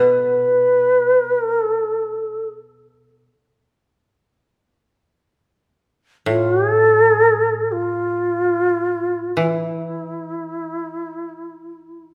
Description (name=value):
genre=japanese traditional, Japanese chamber music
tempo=free time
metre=none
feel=none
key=unclear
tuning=A4 = 440 Hz
part: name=shakuhachi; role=melody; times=0.0-12.1 s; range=E4 to B4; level=-19 LUFS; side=equal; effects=none
part: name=koto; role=accompaniment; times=0.0-12.1 s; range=A2 to E3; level=-27 LUFS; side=equal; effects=none
room=moderate recital hall reverb, RT60 1.6 s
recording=none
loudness=-18 LUFS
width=mono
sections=0.0-12.1 A section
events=none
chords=none